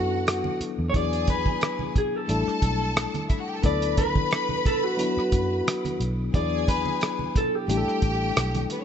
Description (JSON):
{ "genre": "lush 1970s-style soul", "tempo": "89 BPM", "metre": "4/4", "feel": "swing 54% on 16ths", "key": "D major", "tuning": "A4 = 440 Hz", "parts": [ { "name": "electric guitar through a small old amp", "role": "melody", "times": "0.0-8.7 s", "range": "F#4 to D5", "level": "-28 LUFS", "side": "equal", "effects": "slapback echo" }, { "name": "clear symphonic string section", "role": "second line", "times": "0.0-8.8 s", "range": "B3 to B5", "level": "-32 LUFS", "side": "equal", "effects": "none" }, { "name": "tine electric piano", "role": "accompaniment", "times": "0.0-8.8 s", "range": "F#3 to A4", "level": "-30 LUFS", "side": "left 5 dB", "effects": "medium stereo tremolo" }, { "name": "vintage muted fingered electric bass", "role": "bass", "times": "0.0-8.6 s", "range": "A1 to F#2", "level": "-28 LUFS", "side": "right 1 dB", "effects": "none" }, { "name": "cloth-damped thuddy drum kit", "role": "drums", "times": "0.3-8.8 s", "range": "hi-hat, kick drum, rim click", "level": "-25 LUFS", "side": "right 1 dB", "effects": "none" }, { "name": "congas", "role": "percussion", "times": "0.3-8.8 s", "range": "none", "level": "-35 LUFS", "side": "right 6 dB", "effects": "none" } ], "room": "light reverb, small room ambience", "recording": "nothing above 8.0 kHz", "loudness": "-22 LUFS", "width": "side -8 dB against mid", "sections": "0.0-8.8 A section", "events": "none", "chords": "0.0 D69; 0.9 E9; 2.3 A7sus4; 3.6 D69; 6.3 E9; 7.7 A7sus4" }